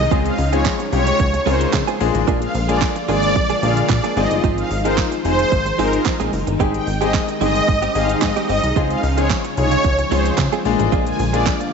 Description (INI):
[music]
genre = dance-pop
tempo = 111 BPM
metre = 4/4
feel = straight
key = unclear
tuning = A4 = 439 Hz
[part]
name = phased string machine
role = sustained chords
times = 0.0-11.7 s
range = Db3 to G5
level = -24 LUFS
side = equal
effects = ensemble chorus, phaser, sidechain pumping
[part]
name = direct-recorded clean electric guitar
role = riff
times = 0.0-11.6 s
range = F3 to Ab4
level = -25 LUFS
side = right 12 dB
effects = analog chorus
[part]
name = plucky analog bass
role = bass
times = 0.0-11.5 s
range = F1 to Db3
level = -21 LUFS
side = equal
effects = sidechain pumping
[part]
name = downlifter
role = sound effects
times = 0.0-2.3 s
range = none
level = -38 LUFS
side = left 1 dB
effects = none
[part]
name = clear concert grand piano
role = accompaniment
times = 0.1-11.6 s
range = Ab3 to Bb4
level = -23 LUFS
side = left 11 dB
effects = sidechain pumping
[part]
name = pop drum kit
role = drums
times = 0.1-11.7 s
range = handclaps, hi-hat, kick drum, shaker, snare drum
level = -23 LUFS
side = right 3 dB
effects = none
[part]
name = supersaw pad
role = melody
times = 0.3-11.4 s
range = Bb4 to Ab5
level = -22 LUFS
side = right 1 dB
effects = sidechain pumping, slapback echo
[part]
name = tambourine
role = percussion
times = 0.7-11.6 s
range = none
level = -38 LUFS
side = right 12 dB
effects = none
[sound]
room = moderate echo chamber reverb, RT60 2.0 s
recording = 1960s-style stereo with parts hard left and right, nothing above 7.8 kHz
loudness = -16 LUFS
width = side -6 dB against mid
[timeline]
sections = 0.0-11.7 A section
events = none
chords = 0.1 Dbmaj7; 2.0 Bb7; 4.2 Fm7; 6.6 Abmaj7; 8.8 Dbmaj7; 10.7 Bb7